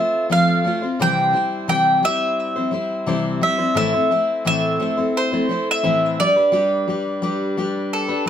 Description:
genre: rock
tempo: 87 BPM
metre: 4/4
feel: straight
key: C major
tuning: A4 = 437 Hz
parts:
  - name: mandolin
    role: melody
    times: 0.0-8.2 s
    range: A4 to G5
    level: -19 LUFS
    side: equal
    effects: digital delay
  - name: picked steel-string acoustic guitar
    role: accompaniment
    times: 0.0-8.3 s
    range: A2 to C5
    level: -21 LUFS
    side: left 2 dB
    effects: none
room: moderate studio reverb, RT60 0.7 s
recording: none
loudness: -17 LUFS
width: side -9 dB against mid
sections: 0.0-8.3 A section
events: none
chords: 0.0 F; 1.0 C; 3.8 Am; 6.2 G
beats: 0.30 | 0.99 1.68 2.38 3.07 | 3.76 4.45 5.14 5.84 | 6.53 7.22 7.92

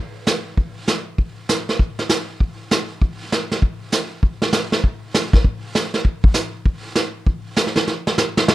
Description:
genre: jazz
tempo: 197 BPM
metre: 4/4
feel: swing 63% on 8ths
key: none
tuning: none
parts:
  - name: vintage brush drum kit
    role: drums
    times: 0.3-8.5 s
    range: brushed snare drum, hi-hat, kick drum, snare drum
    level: -18 LUFS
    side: equal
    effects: none
room: light reverb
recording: dark, warm production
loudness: -18 LUFS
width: side -16 dB against mid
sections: 0.0-8.5 A section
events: drum fill 7.9-8.5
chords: none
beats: 0.27 0.58 0.88 | 1.19 1.49 1.79 2.10 | 2.40 2.71 3.01 3.32 | 3.62 3.92 4.23 4.53 | 4.84 5.14 5.45 5.75 | 6.05 6.36 6.66 6.97 | 7.27 7.58 7.88 8.18 | 8.49

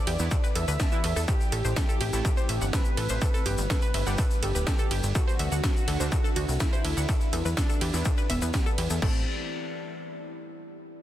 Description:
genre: melodic techno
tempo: 124 BPM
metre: 4/4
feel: straight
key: A dorian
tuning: A4 = 440 Hz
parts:
  - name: soft supersaw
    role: melody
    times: 0.0-9.2 s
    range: B3 to E5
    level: -35 LUFS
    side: equal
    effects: sidechain pumping, tape echo
  - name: deep dark ambient pad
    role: sustained chords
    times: 0.0-9.2 s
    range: G3 to F#5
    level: -38 LUFS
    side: equal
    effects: chorus, built-in reverb, sidechain pumping
  - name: warbly dusty pluck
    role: arpeggios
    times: 0.0-9.2 s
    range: F#4 to A5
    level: -36 LUFS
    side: equal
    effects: chorus, sidechain pumping, tape echo
  - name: plucky analog bass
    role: bass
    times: 0.1-9.2 s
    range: D1 to E2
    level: -28 LUFS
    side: equal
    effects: sidechain pumping
  - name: techno drum kit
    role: drums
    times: 0.1-9.1 s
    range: crash cymbal, hi-hat, ride cymbal, snare drum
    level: -35 LUFS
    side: right 1 dB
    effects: overdrive
  - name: synth brass stab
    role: stabs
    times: 0.2-9.2 s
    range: D3 to A4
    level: -40 LUFS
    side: right 2 dB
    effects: none
  - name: tube shaker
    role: percussion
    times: 0.2-9.0 s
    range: none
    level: -38 LUFS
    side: left 4 dB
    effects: none
  - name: electronic kick drum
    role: drums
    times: 0.3-9.1 s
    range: none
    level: -26 LUFS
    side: equal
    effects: distortion, overdrive
room: digital ambience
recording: dense, heavily limited modern master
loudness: -24 LUFS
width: side -13 dB against mid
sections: 0.0-9.0 A section; 9.0-11.0 B section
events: drop 0.0-9.0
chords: 0.0 Em7; 1.3 Am7; 3.2 Gadd9; 5.2 D7; 7.1 Em7; 9.0 Am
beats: 0.31 0.80 | 1.28 1.76 2.25 2.73 | 3.22 3.70 4.18 4.67 | 5.15 5.63 6.12 6.60 | 7.09 7.57 8.05 8.54 | 9.02

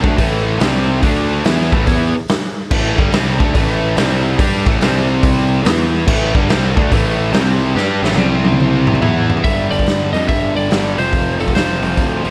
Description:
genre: blues rock power trio and southern rock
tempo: 143 BPM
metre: 4/4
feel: swing 65% on 8ths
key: A minor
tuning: A4 = 439 Hz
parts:
  - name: overdriven electric guitar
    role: riff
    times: 0.0-12.3 s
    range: F2 to G4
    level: -20 LUFS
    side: equal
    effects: none
  - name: fuzz picked electric bass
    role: bass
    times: 0.0-12.3 s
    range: F1 to G2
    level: -20 LUFS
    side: equal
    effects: overdrive
  - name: raw garage drum kit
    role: drums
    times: 0.0-12.3 s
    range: crash cymbal, hi-hat, kick drum, snare drum, toms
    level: -19 LUFS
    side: equal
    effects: none
  - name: lightly driven lead guitar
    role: melody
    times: 9.4-12.3 s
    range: A4 to E5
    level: -23 LUFS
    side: equal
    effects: none
room: little or no reverb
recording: none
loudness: -15 LUFS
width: mono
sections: 0.0-9.4 A section; 9.4-12.3 B section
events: drum fill 7.8-9.4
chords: 0.0 A5; 0.6 C5; 1.0 D5; 1.4 Am; 4.0 C5; 4.4 A5; 4.8 C5; 5.7 E5; 6.1 Am; 7.3 C5; 7.8 A5; 8.2 C5; 9.0 E5; 9.4 G5; 10.9 F5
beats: 0.19 0.61 | 1.03 1.45 1.87 2.29 | 2.71 3.13 3.55 3.97 | 4.39 4.81 5.23 5.65 | 6.07 6.49 6.91 7.33 | 7.75 8.18 8.60 9.02 | 9.44 9.86 10.29 10.71 | 11.13 11.55 11.98

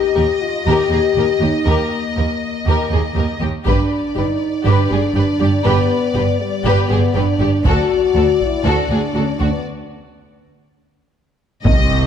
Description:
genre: cinematic, epic orchestral film score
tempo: 120 BPM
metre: 4/4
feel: straight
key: unclear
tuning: A4 = 440 Hz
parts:
  - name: rich studio violin section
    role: melody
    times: 0.0-12.1 s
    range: D5 to Eb5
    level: -25 LUFS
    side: left 4 dB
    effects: none
  - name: dark French horn section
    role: sustained chords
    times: 0.0-11.8 s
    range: Eb3 to G4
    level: -19 LUFS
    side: left 4 dB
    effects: none
  - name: warm symphonic viola section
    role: accompaniment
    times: 0.1-12.1 s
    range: C4 to G4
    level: -26 LUFS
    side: right 2 dB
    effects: none
  - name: warm symphonic violin section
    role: second line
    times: 0.2-9.5 s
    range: F#4 to B4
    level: -24 LUFS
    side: left 3 dB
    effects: none
  - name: dark symphonic double bass section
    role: bass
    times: 0.2-12.1 s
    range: G1 to Eb2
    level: -20 LUFS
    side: right 3 dB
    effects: none
  - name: rich symphonic cello section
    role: bass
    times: 0.2-12.1 s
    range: C2 to G2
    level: -22 LUFS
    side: right 2 dB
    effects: none
  - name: taiko ensemble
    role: drums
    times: 3.7-4.6, 7.7-8.6, 11.7-12.1 s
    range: none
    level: -18 LUFS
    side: equal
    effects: none
  - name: impact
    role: sound effects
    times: 11.6-12.1 s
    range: none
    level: -25 LUFS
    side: equal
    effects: none
room: moderate scoring stage reverb, RT60 2.0 s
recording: dark, warm production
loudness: -14 LUFS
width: side -8 dB against mid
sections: 0.0-11.7 A section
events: break 9.7-11.7; impact 11.7-12.1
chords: 0.0 Eb; 3.7 G; 7.7 D; 9.7 N.C.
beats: 0.17 0.67 1.17 | 1.67 2.17 2.67 3.17 | 3.67 4.17 4.67 5.16 | 5.66 6.16 6.66 7.16 | 7.66 8.16 8.66 9.16 | 9.66 10.16 10.66 11.16 | 11.65

